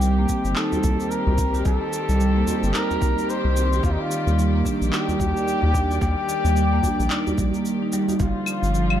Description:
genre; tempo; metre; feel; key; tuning
organic downtempo; 110 BPM; 4/4; swing 59% on 16ths; unclear; A4 = 440 Hz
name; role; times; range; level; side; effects
trumpet with bucket mute; melody; 0.0-9.0 s; Eb4 to C5; -27 LUFS; left 1 dB; ping-pong delay
warm chamber string section; sustained chords; 0.0-9.0 s; D3 to D5; -29 LUFS; equal; sidechain pumping
marimba with medium hard mallets; arpeggios; 0.0-9.0 s; F3 to G4; -25 LUFS; right 2 dB; low-pass filter, ping-pong delay
round analog bass; bass; 0.0-9.0 s; G1 to Eb2; -21 LUFS; equal; tube saturation, sidechain pumping
electronic cabasa, handclaps and claves; drums; 0.0-9.0 s; none; -30 LUFS; equal; none
electronic kick drum; drums; 0.3-8.3 s; none; -25 LUFS; equal; none
djembe; percussion; 0.7-8.3 s; none; -33 LUFS; right 2 dB; none
room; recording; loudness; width
light reverb, small room ambience; dark, warm production; -19 LUFS; side -10 dB against mid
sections
0.0-8.2 A section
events
none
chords
0.0 Cm7; 3.8 Ebmaj7; 8.2 G7(no3)

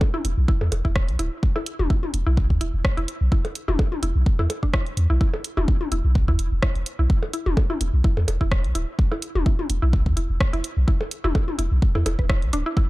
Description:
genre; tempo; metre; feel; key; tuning
minimal techno; 127 BPM; 4/4; swing 55% on 16ths; unclear; A4 = 440 Hz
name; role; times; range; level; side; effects
electronic kick drum; drums; 0.0-12.9 s; none; -20 LUFS; equal; none
electronic percussion blips and toms; percussion; 0.0-12.2 s; none; -30 LUFS; left 2 dB; ping-pong delay
mallet-like synth pluck; riff; 0.1-12.8 s; D4 to B4; -32 LUFS; equal; chorus, sidechain pumping, tape echo
punchy sub bass; bass; 0.2-12.6 s; D1 to E2; -21 LUFS; equal; sidechain pumping
house drum kit; drums; 0.2-12.6 s; hi-hat, rim click; -29 LUFS; right 1 dB; none
room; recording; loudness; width
digital ambience; dark, warm production; -20 LUFS; side -19 dB against mid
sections
0.0-12.9 A section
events
none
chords
0.0 E5

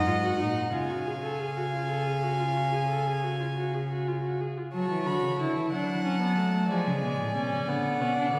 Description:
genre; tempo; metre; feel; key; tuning
classical, baroque-style fugue for string quartet; 60 BPM (dotted quarters); 12/8; straight; F# minor; A4 = 435 Hz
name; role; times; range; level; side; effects
warm violin; melody; 0.0-8.4 s; F#5 to B5; -35 LUFS; equal; none
warm violin; second line; 0.0-8.4 s; C#5 to F#5; -37 LUFS; equal; none
warm viola; accompaniment; 0.0-8.4 s; Ab3 to A4; -34 LUFS; equal; none
rich cello; bass; 0.0-8.4 s; G#2 to F#3; -33 LUFS; equal; none
room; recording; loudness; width
wet concert hall reverb, RT60 1.9 s; recorded in a church or concert hall; -29 LUFS; mono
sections
0.0-4.7 A section; 4.7-8.4 B section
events
none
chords
0.0 G#7(no3); 0.7 C#; 4.7 F#m; 6.7 Fdim7 (rootless)

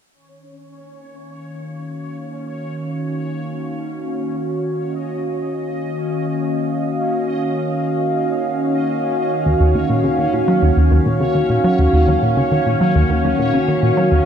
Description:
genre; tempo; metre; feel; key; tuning
ambient, sequencer-driven space music; 103 BPM; 4/4; straight; unclear; A4 = 439 Hz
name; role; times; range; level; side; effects
sweeping resonant pad; sustained chords; 1.3-14.3 s; Eb3 to F5; -19 LUFS; equal; chorus, phaser
bubbling stepped-filter texture; texture; 0.1-14.3 s; Db4 to Eb5; -28 LUFS; equal; chorus, built-in reverb
plucky analog bass; riff; 9.5-14.2 s; Eb2 to Gb3; -16 LUFS; equal; ping-pong delay
room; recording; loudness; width
wet lush hall reverb, RT60 3.2 s; cassette tape; -16 LUFS; side -8 dB against mid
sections
0.1-14.3 A section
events
fade-in on synth texture 0.1-14.3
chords
0.1 Ebm7

